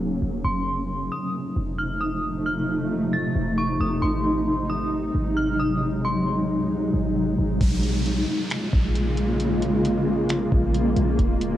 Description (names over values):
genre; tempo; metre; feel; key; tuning
hip hop, atmospheric cloud-rap; 134 BPM; 4/4; half-time; Bb minor; A4 = 439 Hz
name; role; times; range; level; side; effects
granular cloud pad; sustained chords; 0.0-11.6 s; C3 to Gb4; -23 LUFS; equal; built-in reverb, sidechain pumping, low-pass filter, cassette tape
warm 808-style bass; bass; 0.0-11.6 s; Eb1 to C2; -27 LUFS; equal; none
dark detuned synth bell; melody; 0.4-6.3 s; C6 to A6; -29 LUFS; equal; chorus, low-pass filter, cassette tape, analog delay
booming analog drum machine; drums; 7.6-11.5 s; finger snaps, hi-hat, kick drum; -25 LUFS; equal; overdrive, vintage 12-bit sampler grit, cassette tape
downlifter; sound effects; 7.6-11.2 s; none; -37 LUFS; equal; none
room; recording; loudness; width
moderate studio ambience, RT60 0.5 s; home recording on cassette; -21 LUFS; side -12 dB against mid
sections
0.0-7.6 A section; 7.6-11.6 B section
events
filter sweep 0.0-7.6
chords
0.4 F7; 4.0 Ab7; 7.6 Bbm7